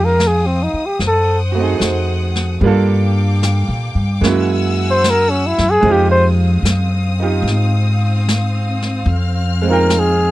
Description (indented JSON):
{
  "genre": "jazz ballad",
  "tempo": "74 BPM",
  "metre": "4/4",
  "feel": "swing 68% on 8ths",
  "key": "F minor",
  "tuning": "A4 = 444 Hz",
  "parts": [
    { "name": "breathy flugelhorn", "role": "melody", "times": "0.0-10.3 s", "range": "C4 to C5", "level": "-14 LUFS", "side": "equal", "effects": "none" },
    { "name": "bright upright piano", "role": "accompaniment", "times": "0.0-10.3 s", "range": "F3 to G5", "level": "-20 LUFS", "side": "right 6 dB", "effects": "none" },
    { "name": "rich studio string section", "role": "sustained chords", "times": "0.0-10.3 s", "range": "C4 to F6", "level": "-25 LUFS", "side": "left 2 dB", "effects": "none" },
    { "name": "upright bass", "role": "bass", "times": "0.0-10.3 s", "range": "F2 to Bb2", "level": "-16 LUFS", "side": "equal", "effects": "none" },
    { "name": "vintage brush drum kit", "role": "drums", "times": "0.2-10.3 s", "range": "brushed snare drum, hi-hat, snare drum", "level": "-21 LUFS", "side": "left 1 dB", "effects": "none" }
  ],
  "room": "little or no reverb",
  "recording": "dry, close 1970s-style studio recording",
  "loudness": "-13 LUFS",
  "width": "side -16 dB against mid",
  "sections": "0.0-10.3 A section",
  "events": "flugelhorn solo 0.0-10.3",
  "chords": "0.0 Fm9; 1.0 F#dim7; 2.6 Gm7; 4.2 Gb9; 5.8 Fm7",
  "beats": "0.18 0.99 1.80 | 2.61 3.42 4.23 5.03 | 5.84 6.65 7.46 8.27 | 9.09 9.91"
}